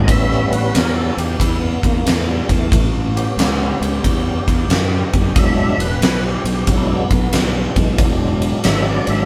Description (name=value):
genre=blues rock power trio and southern rock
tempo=91 BPM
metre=4/4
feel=swing 66% on 8ths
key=unclear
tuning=A4 = 439 Hz
part: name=tonewheel organ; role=sustained chords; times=0.0-9.3 s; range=E3 to E5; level=-24 LUFS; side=equal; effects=slow rotary speaker, chorus vibrato
part: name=fuzz fingered electric bass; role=bass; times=0.0-9.3 s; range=E1 to F#2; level=-21 LUFS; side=equal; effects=overdrive
part: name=huge arena drum kit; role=drums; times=0.1-9.2 s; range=kick drum, ride cymbal, snare drum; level=-20 LUFS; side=equal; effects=none
room=moderate stone room reverb, RT60 1.0 s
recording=band playing live in one room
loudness=-17 LUFS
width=mono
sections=0.0-9.3 A section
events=tonewheel organ solo 0.0-9.3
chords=0.1 A7; 5.4 E7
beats=| 0.09 0.75 1.41 2.07 | 2.73 3.39 4.05 4.71 | 5.37 6.02 6.68 7.34 | 8.00 8.65